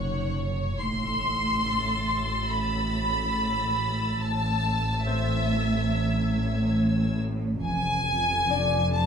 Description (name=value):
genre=cinematic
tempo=70 BPM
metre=4/4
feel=straight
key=unclear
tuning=A4 = 440 Hz
part: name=warm symphonic violin section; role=melody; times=0.0-9.1 s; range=C#5 to C6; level=-27 LUFS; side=left 1 dB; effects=none
part: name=rich symphonic cello section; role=bass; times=0.0-9.1 s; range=F2 to A2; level=-30 LUFS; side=equal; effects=none
part: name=warm studio double bass section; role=bass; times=0.0-9.1 s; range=F1 to A1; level=-30 LUFS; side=right 1 dB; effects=none
part: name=metallic inharmonic drone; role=drone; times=0.0-9.1 s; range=F#1 to F2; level=-32 LUFS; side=right 1 dB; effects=chorus, built-in reverb
part: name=concert harp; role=texture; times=0.0-9.1 s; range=C4 to E#6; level=-34 LUFS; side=left 8 dB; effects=none
part: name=rich symphonic violin section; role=texture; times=0.0-7.2 s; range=C#6 to A6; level=-38 LUFS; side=equal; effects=none
room=wet stone room reverb, RT60 1.1 s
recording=minimal, uncompressed stereo recording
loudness=-24 LUFS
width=side -7 dB against mid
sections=0.0-9.1 A section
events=none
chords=0.0 F#5; 0.8 Am; 7.6 F5